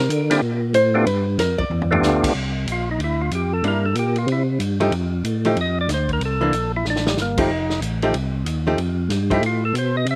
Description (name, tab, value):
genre	soul jazz organ trio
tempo	187 BPM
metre	4/4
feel	swing 63% on 8ths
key	unclear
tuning	A4 = 445 Hz
part	archtop guitar, miked and amplified	accompaniment	0.0-9.4 s	E3 to D5	-23 LUFS	equal	slapback echo
part	tonewheel organ	bass	0.0-10.2 s	F1 to D3	-24 LUFS	equal	chorus vibrato, slow rotary speaker
part	vintage drum kit	drums	0.1-10.2 s	crash cymbal, hi-hat, kick drum, ride cymbal, snare drum, toms	-31 LUFS	equal	none
part	percussive tonewheel organ	melody	0.3-10.2 s	G3 to E5	-25 LUFS	equal	slow rotary speaker, overdrive, slapback echo
room	little or no reverb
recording	recorded outdoors, with no room sound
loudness	-21 LUFS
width	mono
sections	0.0-2.4 A section; 2.4-10.2 A section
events	hollow-body jazz guitar solo 0.0-2.4; drum fill 1.7-2.0, 6.9-7.2; tonewheel organ solo 2.4-10.2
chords	0.0 C7sus2; 1.1 G9; 2.4 C9; 4.9 F7; 6.2 C7sus2; 7.5 F9